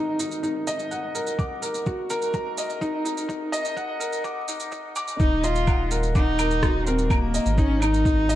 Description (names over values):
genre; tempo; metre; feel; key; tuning
piano and strings electronica; 126 BPM; 4/4; straight; Eb minor; A4 = 440 Hz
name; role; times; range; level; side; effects
felt-muted upright piano; riff; 0.0-8.4 s; Eb4 to D6; -26 LUFS; equal; ping-pong delay
warm sub bass; bass; 0.0-8.4 s; Eb1 to Ab1; -26 LUFS; equal; sidechain pumping, high-pass filter
electronic shaker, woodblock and rim click; drums; 0.2-8.4 s; none; -32 LUFS; right 2 dB; none
electronic kick drum; drums; 1.4-8.2 s; none; -22 LUFS; equal; none
dark cello; melody; 5.2-8.4 s; Bb3 to F4; -25 LUFS; equal; none
room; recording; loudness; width
light reverb; dark, warm production, high-pass filter; -22 LUFS; side -13 dB against mid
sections
0.0-5.2 A section; 5.2-8.4 B section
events
build-up 0.0-5.2; drop 5.2-8.4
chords
0.0 Ebm